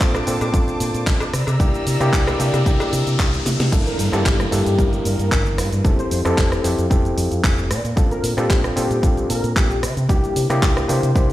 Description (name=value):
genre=nu-disco, nu disco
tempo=113 BPM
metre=4/4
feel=straight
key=G dorian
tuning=A4 = 440 Hz
part: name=overdriven reed electric piano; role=accompaniment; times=0.0-11.3 s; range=Bb3 to Bb4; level=-23 LUFS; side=equal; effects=slapback echo
part: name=warm chamber violin section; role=sustained chords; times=0.0-3.7 s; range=C5 to E6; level=-29 LUFS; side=left 2 dB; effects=sidechain pumping
part: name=fingered electric bass with an envelope filter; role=bass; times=0.0-11.3 s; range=F1 to C3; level=-22 LUFS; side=equal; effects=sidechain pumping
part: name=electronic kick drum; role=drums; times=0.0-11.3 s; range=none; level=-18 LUFS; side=equal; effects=none
part: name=house drum kit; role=drums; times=0.0-11.3 s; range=cabasa, crash cymbal, handclaps, hi-hat, rim click, snare drum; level=-26 LUFS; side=equal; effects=none
part: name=riser and downlifter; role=sound effects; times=1.4-8.0 s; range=none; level=-30 LUFS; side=equal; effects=none
part: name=cowbell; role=percussion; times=0.1-2.9 s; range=none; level=-28 LUFS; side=left 2 dB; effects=none
part: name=wide unison lead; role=melody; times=3.9-11.3 s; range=G4 to C5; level=-26 LUFS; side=left 2 dB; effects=analog delay
room=light reverb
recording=played on a big sound system in a bare room, stone room reverb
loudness=-16 LUFS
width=side -15 dB against mid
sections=0.0-3.7 A section; 3.7-11.3 B section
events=riser 1.4-3.7; drum fill 3.5; drop 3.7-11.3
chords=0.0 Bbmaj9; 1.3 C9; 3.7 Gm69; 5.8 Fmaj9; 7.7 Bbmaj9; 9.8 C9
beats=0.01 0.54 1.07 | 1.60 2.13 2.66 3.19 | 3.72 4.25 4.79 5.32 | 5.85 6.38 6.91 7.44 | 7.97 8.50 9.03 9.56 | 10.10 10.63 11.16